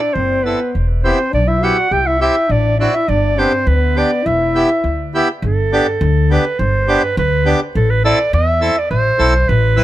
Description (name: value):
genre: klezmer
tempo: 103 BPM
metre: 2/4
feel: straight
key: unclear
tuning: A4 = 441 Hz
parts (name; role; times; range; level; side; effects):
- warm clarinet; melody; 0.0-9.8 s; A4 to G5; -17 LUFS; right 2 dB; analog delay
- warm trombone; second line; 0.0-5.1 s; B3 to G4; -20 LUFS; left 4 dB; none
- upright bass; bass; 0.2-9.8 s; E1 to E2; -16 LUFS; equal; none
- accordion; accompaniment; 0.5-9.8 s; B3 to B4; -17 LUFS; right 1 dB; none
room: light reverb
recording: close, detailed microphones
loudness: -13 LUFS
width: side -14 dB against mid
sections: 0.0-5.4 A section; 5.4-9.8 B section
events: none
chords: 0.0 Am; 0.7 Em; 1.9 C; 3.1 G; 4.3 Em; 5.4 G; 7.8 Am